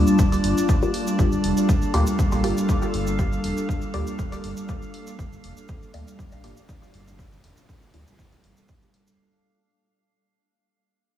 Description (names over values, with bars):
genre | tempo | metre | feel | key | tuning
dub techno | 120 BPM | 4/4 | swing 54% on 16ths | G minor | A4 = 440 Hz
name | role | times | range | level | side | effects
warbly tape-like pad | sustained chords | 0.0-9.2 s | G3 to A4 | -24 LUFS | equal | chorus, built-in reverb, sidechain pumping
filtered dub chord stab | stabs | 0.0-8.9 s | Bb3 to D5 | -30 LUFS | left 1 dB | phaser, sidechain pumping, dub echo
round analog bass | bass | 0.0-8.5 s | D1 to D2 | -26 LUFS | equal | sidechain pumping
drifting glass-harmonics texture | texture | 0.0-9.2 s | D4 to F5 | -34 LUFS | equal | chorus, built-in reverb, sidechain pumping
tube shaker | percussion | 0.1-9.2 s | none | -39 LUFS | right 2 dB | none
electronic kick drum | drums | 0.2-8.8 s | none | -23 LUFS | equal | none
electronic hi-hat | drums | 0.3-9.0 s | none | -38 LUFS | left 1 dB | none
room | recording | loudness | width
moderate huge ambient reverb, RT60 7.2 s | dreamy mix soaked in reverb, studio ambience | -20 LUFS | side -11 dB against mid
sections
0.0-9.2 A section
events
fade-out 0.0-9.2; filter sweep on analog synth bass 0.0-9.2; filter sweep on synth stab 0.0-9.2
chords
0.0 Gm7